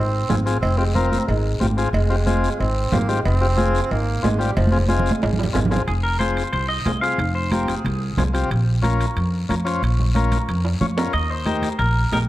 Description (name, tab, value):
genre	latin, cumbia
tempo	183 BPM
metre	4/4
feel	straight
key	F minor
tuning	A4 = 440 Hz
part	breathy tenor saxophone	second line	0.0-5.9 s	F3 to C4	-26 LUFS	right 3 dB	none
part	upright bass	bass	0.0-12.3 s	F1 to F2	-21 LUFS	equal	none
part	combo organ	accompaniment	0.3-12.2 s	C4 to Db5	-25 LUFS	left 3 dB	none
part	congas	percussion	0.3-12.3 s	none	-25 LUFS	right 2 dB	none
part	guiro	percussion	0.3-12.3 s	none	-37 LUFS	left 5 dB	none
part	timbales and cowbell	percussion	0.3-12.3 s	none	-30 LUFS	right 4 dB	none
part	clean electric guitar	melody	5.9-8.3, 11.1-12.2 s	Ab4 to F5	-24 LUFS	equal	none
room	light reverb, studio reverb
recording	dark, warm production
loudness	-18 LUFS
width	side -15 dB against mid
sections	0.0-5.9 A section; 5.9-12.3 B section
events	drum fill 4.6-5.9, 10.6-11.1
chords	0.0 Fm; 8.5 Bbm; 11.1 Eb